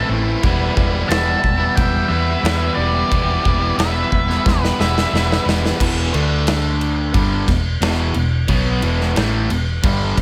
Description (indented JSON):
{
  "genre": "classic rock",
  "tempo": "89 BPM",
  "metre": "4/4",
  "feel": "straight",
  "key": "E minor",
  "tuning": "A4 = 441 Hz",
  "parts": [
    { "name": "octave-fuzz lead guitar", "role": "melody", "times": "0.0-5.4 s", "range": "B4 to A5", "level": "-25 LUFS", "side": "equal", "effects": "wah, distortion" },
    { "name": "octave-fuzz lead guitar", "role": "second line", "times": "0.0-5.4 s", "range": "G4 to E5", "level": "-32 LUFS", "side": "equal", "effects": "distortion" },
    { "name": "crunchy overdriven guitar", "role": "riff", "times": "0.0-10.2 s", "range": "E2 to E4", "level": "-26 LUFS", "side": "equal", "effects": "phaser" },
    { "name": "crunchy overdriven guitar", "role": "riff", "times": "0.0-10.2 s", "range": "E2 to E4", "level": "-25 LUFS", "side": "equal", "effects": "none" },
    { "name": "hollow-body short-scale fingered electric bass", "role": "bass", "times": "0.1-10.2 s", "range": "E1 to E2", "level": "-23 LUFS", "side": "equal", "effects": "none" },
    { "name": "big rock drum kit", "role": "drums", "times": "0.4-10.2 s", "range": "crash cymbal, kick drum, snare drum", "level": "-23 LUFS", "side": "equal", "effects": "none" }
  ],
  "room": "studio reverb",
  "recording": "none",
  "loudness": "-18 LUFS",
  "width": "mono",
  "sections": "0.0-5.8 A section; 5.8-10.2 B section",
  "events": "drum fill 4.5-5.8",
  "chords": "0.4 Em; 5.8 E5; 6.1 D5; 7.1 Em",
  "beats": "| 0.44 1.11 1.78 2.45 | 3.12 3.79 4.46 5.13 | 5.80 6.47 7.14 7.81 | 8.49 9.16 9.83"
}